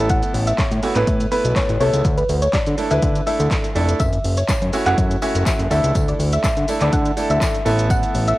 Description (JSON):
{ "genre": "dance-pop", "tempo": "123 BPM", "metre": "4/4", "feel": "straight", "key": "unclear", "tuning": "A4 = 440 Hz", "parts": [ { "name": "bright grand piano", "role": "accompaniment", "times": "0.0-8.4 s", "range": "A3 to B4", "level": "-22 LUFS", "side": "right 2 dB", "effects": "sidechain pumping, cassette tape" }, { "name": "fat analog bass", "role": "bass", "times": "0.0-8.3 s", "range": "F1 to D3", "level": "-20 LUFS", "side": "equal", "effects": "sidechain pumping" }, { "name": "soft round pluck", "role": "melody", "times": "0.1-8.4 s", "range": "B4 to F#5", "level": "-23 LUFS", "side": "left 1 dB", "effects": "chorus, sidechain pumping, cassette tape" }, { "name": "punchy analog drum machine", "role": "drums", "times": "0.1-8.4 s", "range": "handclaps, hi-hat, kick drum, shaker, snare drum", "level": "-21 LUFS", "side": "equal", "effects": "none" }, { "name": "tambourine", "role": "percussion", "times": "4.0-8.3 s", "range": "none", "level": "-36 LUFS", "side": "left 8 dB", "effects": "none" } ], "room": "light reverb", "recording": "home recording on cassette", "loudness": "-16 LUFS", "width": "side -18 dB against mid", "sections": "0.0-8.4 A section", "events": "none", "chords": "0.0 Asus2; 2.0 Dsus2; 4.0 F#m7; 5.7 Dsus2; 7.7 Asus2", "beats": "| 0.10 0.59 1.07 1.56 | 2.05 2.54 3.02 3.51 | 4.00 4.49 4.98 5.46 | 5.95 6.44 6.93 7.42 | 7.90" }